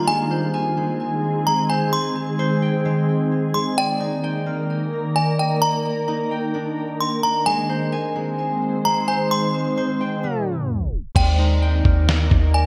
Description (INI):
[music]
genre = hip hop, atmospheric cloud-rap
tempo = 130 BPM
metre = 4/4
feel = half-time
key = Eb major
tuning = A4 = 438 Hz
[part]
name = delicate synth tine bell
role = melody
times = 0.0-12.7 s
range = G5 to C6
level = -25 LUFS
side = equal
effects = chorus, digital delay
[part]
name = glassy FM pad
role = sustained chords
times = 0.0-12.7 s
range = Eb3 to D5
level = -25 LUFS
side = equal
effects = ensemble chorus, built-in reverb, sidechain pumping
[part]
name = concert harp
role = arpeggios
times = 0.0-12.7 s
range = Ab3 to Ab5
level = -30 LUFS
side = equal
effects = digital delay
[part]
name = soft 808-style bass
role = bass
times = 11.2-12.7 s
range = Eb2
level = -20 LUFS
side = equal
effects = none
[part]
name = lo-fi sampler-style drum kit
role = drums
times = 11.2-12.4 s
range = crash cymbal, kick drum, snare drum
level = -21 LUFS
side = equal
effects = gated reverb
[sound]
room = wet lush hall reverb, RT60 1.9 s, digital ambience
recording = bright 1980s-style digital production, tape stop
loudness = -21 LUFS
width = mono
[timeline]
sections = 0.0-11.2 A section; 11.2-12.7 B section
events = tape stop 10.2-11.2; hi-hats muted 11.2-12.7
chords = 0.1 Abmaj7; 3.8 Ebmaj7; 7.5 Abmaj7; 11.2 Ebmaj7